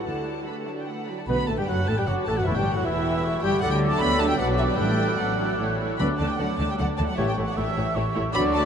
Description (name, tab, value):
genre	quick classical-period movement for symphony orchestra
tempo	153 BPM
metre	3/4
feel	rubato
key	D major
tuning	A4 = 440 Hz
part	warm studio violin section	melody	0.0-8.6 s	D5 to B5	-30 LUFS	equal	none
part	dark studio violin section	second line	0.0-8.7 s	E4 to B5	-33 LUFS	left 1 dB	none
part	mellow clarinet	second line	0.0-8.7 s	D4 to B4	-32 LUFS	left 3 dB	none
part	warm studio viola section	accompaniment	0.0-8.7 s	E3 to A4	-32 LUFS	right 3 dB	none
part	dark studio double bass section	bass	0.0-8.7 s	E1 to D2	-30 LUFS	equal	none
part	warm studio cello section	bass	0.0-8.7 s	E2 to D3	-32 LUFS	equal	none
part	warm oboe	second line	1.3-8.7 s	C#5 to B5	-34 LUFS	left 3 dB	none
part	dark bassoon	accompaniment	1.3-8.7 s	E3 to B3	-35 LUFS	right 5 dB	none
part	mellow French horn section	sustained chords	1.3-8.6 s	D3 to B3	-32 LUFS	right 2 dB	none
part	timpani	percussion	1.3-7.7 s	A2 to D3	-33 LUFS	left 2 dB	none
part	mellow hollow concert flute	second line	1.7-8.7 s	A5 to F#6	-32 LUFS	right 4 dB	none
room	wet huge ambient reverb, RT60 8.2 s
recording	in a vast, echoing space, nothing above 11.0 kHz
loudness	-22 LUFS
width	side -7 dB against mid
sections	0.0-1.3 A section; 1.3-8.7 B section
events	none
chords	0.1 D; 2.5 Em69; 3.6 D; 4.4 Bm; 4.8 D/A; 5.6 A; 6.0 D5; 7.2 A7